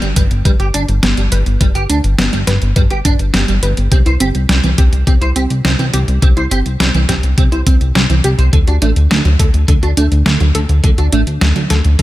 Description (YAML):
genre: synthwave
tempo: 104 BPM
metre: 4/4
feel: straight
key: G major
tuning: A4 = 440 Hz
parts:
  - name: warbly dusty pluck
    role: arpeggios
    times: 0.0-12.0 s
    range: E3 to B4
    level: -20 LUFS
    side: right 1 dB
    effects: chorus, cassette tape, tape echo
  - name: clean electric guitar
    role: riff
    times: 0.0-12.0 s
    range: D3 to C5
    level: -22 LUFS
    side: right 3 dB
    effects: ensemble chorus, tape echo
  - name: chorused synth bass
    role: bass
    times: 0.0-12.0 s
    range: G1 to D2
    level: -13 LUFS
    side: equal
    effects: sidechain pumping
  - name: detuned 8-bit digital drum machine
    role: drums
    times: 0.0-12.0 s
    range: hi-hat, snare drum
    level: -18 LUFS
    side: equal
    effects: overdrive, small room ambience, gated reverb
  - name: electronic kick drum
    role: drums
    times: 0.2-12.0 s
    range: none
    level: -12 LUFS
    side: equal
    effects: overdrive, small room ambience
room: little or no reverb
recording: none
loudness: -10 LUFS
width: side -16 dB against mid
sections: 0.0-12.0 A section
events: none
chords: 0.0 G; 3.9 C; 8.5 D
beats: 0.45 1.03 | 1.61 2.19 2.76 3.34 | 3.92 4.49 5.07 5.65 | 6.22 6.80 7.38 7.95 | 8.53 9.11 9.69 10.26 | 10.84 11.42 11.99